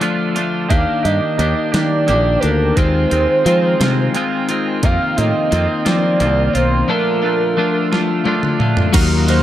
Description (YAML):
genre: indie rock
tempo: 58 BPM (dotted quarters)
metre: 6/8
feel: straight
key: Bb major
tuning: A4 = 440 Hz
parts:
  - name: expressive portamento lead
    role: melody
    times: 0.0-9.4 s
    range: Bb4 to F5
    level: -19 LUFS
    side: right 2 dB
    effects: chorus, plate reverb
  - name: twangy electric guitar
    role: riff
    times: 0.0-9.4 s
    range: F2 to F5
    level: -22 LUFS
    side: right 7 dB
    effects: analog chorus, tape echo
  - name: twelve-string electric guitar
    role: riff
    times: 0.0-9.4 s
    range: Eb3 to G4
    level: -19 LUFS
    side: left 5 dB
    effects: none
  - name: clean 12-bit digital drum machine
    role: drums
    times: 0.0-9.4 s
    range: crash cymbal, hi-hat, kick drum, ride cymbal, snare drum, toms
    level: -19 LUFS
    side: equal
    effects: none
  - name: fingered electric bass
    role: bass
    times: 0.7-9.4 s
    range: Bb1 to F3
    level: -17 LUFS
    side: equal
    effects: none
  - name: tambourine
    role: percussion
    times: 8.9-9.4 s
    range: none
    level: -31 LUFS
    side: right 14 dB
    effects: none
room: moderate studio reverb, RT60 0.6 s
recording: none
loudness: -13 LUFS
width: side -12 dB against mid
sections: 0.0-8.9 A section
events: drum fill 7.9-8.9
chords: 0.0 Bbmaj7 (rootless); 0.7 Ebmaj7; 2.8 Ab6/Eb; 4.8 F7sus4; 6.9 Bbmaj7